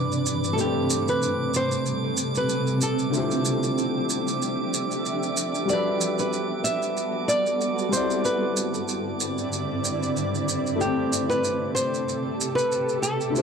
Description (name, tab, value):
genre	sunset chillout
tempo	94 BPM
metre	4/4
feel	swing 55% on 16ths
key	unclear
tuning	A4 = 440 Hz
part	dark grand piano	accompaniment	0.0-13.4 s	D3 to D5	-29 LUFS	left 2 dB	auto-pan, tape echo
part	shimmering ambient pad	sustained chords	0.0-13.4 s	G2 to E5	-27 LUFS	right 1 dB	chorus, built-in reverb
part	drifting glass-harmonics texture	texture	0.0-13.4 s	D6	-34 LUFS	right 4 dB	chorus, built-in reverb
part	shaker	drums	0.1-13.4 s	none	-30 LUFS	right 3 dB	none
part	nylon-string guitar	melody	0.5-13.4 s	G4 to E5	-27 LUFS	equal	tape echo
room	light reverb, studio ambience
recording	dry, gritty hardware recording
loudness	-22 LUFS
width	side -6 dB against mid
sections	0.0-13.4 A section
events	filter sweep on ambient pad 0.0-13.4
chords	0.0 Cmaj9/G; 0.6 Am7; 3.1 Dm11; 5.7 Gmaj9; 7.9 Cmaj9/G; 10.8 Am7